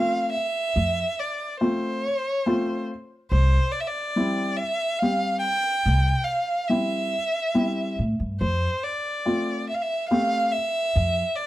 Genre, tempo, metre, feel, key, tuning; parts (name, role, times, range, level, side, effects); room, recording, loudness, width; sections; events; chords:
klezmer; 71 BPM; 3/4; straight; F major; A4 = 442 Hz
rich violin; melody; 0.0-11.5 s; C5 to G5; -25 LUFS; right 1 dB; plate reverb
dark upright piano; accompaniment; 0.0-10.5 s; G3 to G4; -24 LUFS; left 1 dB
upright bass; bass; 0.8-11.2 s; C2 to A2; -21 LUFS; equal
light reverb; -22 LUFS; side -15 dB against mid
0.0-11.5 A section
0.0 F; 3.3 C; 8.4 F